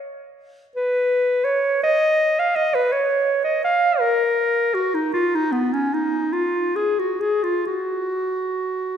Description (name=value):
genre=classical, free, expressive piece for unaccompanied clarinet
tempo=41-56 BPM (dotted quarters)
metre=6/8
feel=rubato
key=F# major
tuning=A4 = 441 Hz
part: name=warm clarinet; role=solo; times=0.8-9.0 s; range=B3 to E#5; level=-18 LUFS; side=equal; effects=none
room=wet concert hall reverb, RT60 2.4 s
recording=heard from further back in the room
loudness=-18 LUFS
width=side -8 dB against mid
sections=0.0-9.0 A section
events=none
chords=none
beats=| 0.74 1.81 | 2.90 3.98 | 5.11 6.34 | 7.70